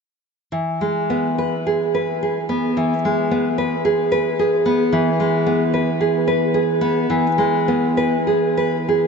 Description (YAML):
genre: classical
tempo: 47-56 BPM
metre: 4/4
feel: rubato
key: E major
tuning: A4 = 439 Hz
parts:
  - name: nylon-string guitar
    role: accompaniment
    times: 0.5-9.1 s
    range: E3 to B4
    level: -16 LUFS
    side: equal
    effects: none
room: wet huge ambient reverb, RT60 8.4 s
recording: dreamy mix soaked in reverb, nothing above 7.7 kHz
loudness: -17 LUFS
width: side -5 dB against mid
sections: 0.5-9.1 A section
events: none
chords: 0.5 E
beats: | 0.52 1.65 2.76 3.84 | 4.92 6.00 7.09 8.26